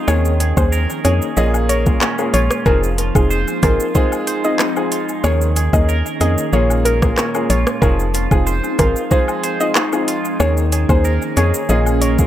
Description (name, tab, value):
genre	dancehall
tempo	93 BPM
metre	4/4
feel	straight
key	F minor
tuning	A4 = 440 Hz
part	glassy FM pad	sustained chords	0.0-12.3 s	Eb3 to Ab4	-25 LUFS	equal	ensemble chorus, built-in reverb, sidechain pumping
part	twangy electric guitar	arpeggios	0.0-12.3 s	Bb2 to C5	-24 LUFS	right 5 dB	analog chorus, tape echo
part	soft round pluck	melody	0.1-12.1 s	Ab4 to Eb5	-22 LUFS	equal	chorus, tape echo
part	warm baby grand piano	accompaniment	0.1-12.3 s	Bb3 to Ab4	-22 LUFS	left 2 dB	none
part	organ-like FM bass	bass	0.1-12.3 s	F1 to F2	-17 LUFS	equal	none
part	afro-pop drum kit	drums	0.1-12.3 s	handclaps, hi-hat, kick drum, rim click, shaker	-18 LUFS	equal	overdrive
part	woodblock and cabasa	percussion	0.1-12.2 s	none	-31 LUFS	left 6 dB	none
room	light reverb, digital ambience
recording	echo-heavy mix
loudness	-14 LUFS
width	side -12 dB against mid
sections	0.0-12.3 A section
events	none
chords	0.1 Eb7sus4; 1.4 Bbm7; 2.7 Fm7; 5.2 Eb7sus4; 6.5 Bbm7; 7.8 Fm7; 10.4 Eb7sus4; 11.7 Bbm7